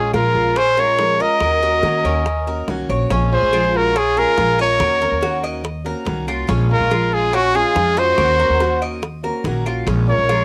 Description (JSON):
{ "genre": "latin, Cuban son and guajira", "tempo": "142 BPM", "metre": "4/4", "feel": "straight", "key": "Bb minor", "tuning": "A4 = 440 Hz", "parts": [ { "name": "clear trumpet", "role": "melody", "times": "0.0-10.4 s", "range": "Gb4 to Eb5", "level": "-18 LUFS", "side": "equal", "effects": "none" }, { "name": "rich studio violin section", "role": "second line", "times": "0.0-10.4 s", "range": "Db4 to Bb4", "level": "-30 LUFS", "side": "equal", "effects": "cassette tape" }, { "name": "picked steel-string acoustic guitar", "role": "accompaniment", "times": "0.0-10.4 s", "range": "Eb3 to Gb4", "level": "-27 LUFS", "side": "equal", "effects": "cassette tape" }, { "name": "Cuban tres", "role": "arpeggios", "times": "0.0-10.4 s", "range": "Db4 to Eb5", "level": "-28 LUFS", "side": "equal", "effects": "cassette tape" }, { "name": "upright bass", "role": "bass", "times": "0.0-10.4 s", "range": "Bb1 to Eb3", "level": "-25 LUFS", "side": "equal", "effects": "none" }, { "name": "bongos", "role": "percussion", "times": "0.1-10.4 s", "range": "none", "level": "-29 LUFS", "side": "equal", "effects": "none" }, { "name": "claves", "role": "percussion", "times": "0.1-10.4 s", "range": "none", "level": "-38 LUFS", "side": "equal", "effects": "none" } ], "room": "moderate booth ambience, RT60 0.2 s", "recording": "home recording on cassette", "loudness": "-17 LUFS", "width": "mono", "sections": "0.0-3.1 A section; 3.1-10.4 B section", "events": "none", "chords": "0.0 Bbm7; 1.4 Ebm7; 3.1 Bbm7; 4.8 Ebm7; 6.5 Bbm7; 8.2 Ebm7; 9.9 Bbm7", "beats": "0.14 0.57 0.99 | 1.42 1.84 2.26 2.69 | 3.11 3.53 3.96 4.38 | 4.80 5.22 5.65 6.07 | 6.49 6.92 7.34 7.76 | 8.18 8.61 9.03 9.45 | 9.87 10.29" }